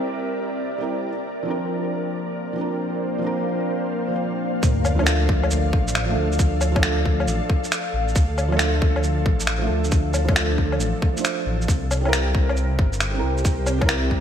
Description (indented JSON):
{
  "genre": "future garage",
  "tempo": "136 BPM",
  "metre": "4/4",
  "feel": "swing 66% on 16ths",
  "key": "D minor",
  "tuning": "A4 = 442 Hz",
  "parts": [
    { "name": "felt-muted upright piano", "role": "accompaniment", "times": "0.0-14.2 s", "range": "F3 to C5", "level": "-26 LUFS", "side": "right 2 dB", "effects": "analog chorus, sidechain pumping, ping-pong delay" },
    { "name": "ethereal airy pad", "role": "sustained chords", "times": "0.0-14.2 s", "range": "Bb3 to F5", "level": "-28 LUFS", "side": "left 1 dB", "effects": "ensemble chorus, built-in reverb, vintage 12-bit sampler grit, sidechain pumping" },
    { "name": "dark detuned saw bass", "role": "bass", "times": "4.6-14.2 s", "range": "G1 to D2", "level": "-23 LUFS", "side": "equal", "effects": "sidechain pumping" },
    { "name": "electronic kick drum", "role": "drums", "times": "4.6-14.2 s", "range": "none", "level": "-20 LUFS", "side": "equal", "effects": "small room ambience" },
    { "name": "electronic shaker, woodblock and finger snaps", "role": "drums", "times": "4.6-14.0 s", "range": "none", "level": "-26 LUFS", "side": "left 1 dB", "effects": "overdrive, small room ambience" },
    { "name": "sub drop", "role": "sound effects", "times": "4.6-6.4 s", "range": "none", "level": "-30 LUFS", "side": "left 1 dB", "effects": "none" }
  ],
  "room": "moderate lush hall reverb, RT60 1.9 s, digital ambience",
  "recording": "bright 1980s-style digital production",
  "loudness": "-19 LUFS",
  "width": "side -9 dB against mid",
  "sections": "0.0-4.6 A section; 4.6-14.2 B section",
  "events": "impact 4.6-6.4",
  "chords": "0.0 C7; 1.1 Bbadd9; 4.6 Dm; 11.7 C7"
}